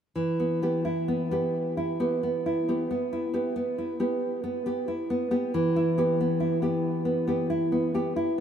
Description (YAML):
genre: classical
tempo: 45 BPM (dotted quarters)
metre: 12/8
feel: rubato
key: E minor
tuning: A4 = 443 Hz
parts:
  - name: nylon-string guitar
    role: accompaniment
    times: 0.2-8.4 s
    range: E3 to G4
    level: -25 LUFS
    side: equal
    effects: none
room: wet huge ambient reverb, RT60 6.5 s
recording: heard from further back in the room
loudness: -25 LUFS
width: side -8 dB against mid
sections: 0.2-8.4 A section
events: none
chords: 0.2 Em